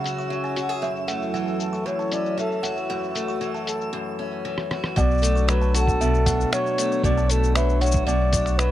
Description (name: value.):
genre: folktronica.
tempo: 116 BPM.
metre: 4/4.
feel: straight.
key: unclear.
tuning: A4 = 442 Hz.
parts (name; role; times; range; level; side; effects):
warm analog pad; sustained chords; 0.0-8.7 s; C#3 to A4; -31 LUFS; left 1 dB; chorus.
picked acoustic archtop guitar; arpeggios; 0.0-8.7 s; F#2 to G#4; -27 LUFS; left 2 dB; tape echo.
twinkling granular texture; texture; 0.0-3.9 s; E5 to E6; -37 LUFS; right 1 dB; built-in reverb.
lo-fi sampler-style drum kit; drums; 0.1-8.7 s; cabasa, finger snaps, hi-hat, rim click; -28 LUFS; left 2 dB; low-pass filter on perc, low-pass filter on hats, low-pass filter on snare.
buzzing kalimba; second line; 0.2-8.6 s; E5 to C#6; -32 LUFS; right 4 dB; tape echo.
breathy flugelhorn; melody; 1.6-8.7 s; A4 to D5; -26 LUFS; equal; tape echo.
warm sub bass; bass; 5.0-8.7 s; B1; -21 LUFS; equal; tube saturation.
electronic kick drum; drums; 5.0-8.4 s; none; -25 LUFS; equal; none.
room: little or no reverb.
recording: dry, close 1970s-style studio recording.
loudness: -20 LUFS.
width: side -13 dB against mid.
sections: 0.0-5.0 A section; 5.0-8.7 B section.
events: drum fill 4.6-5.0.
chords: 0.0 C#sus4; 0.8 F#m7; 5.0 Bm7.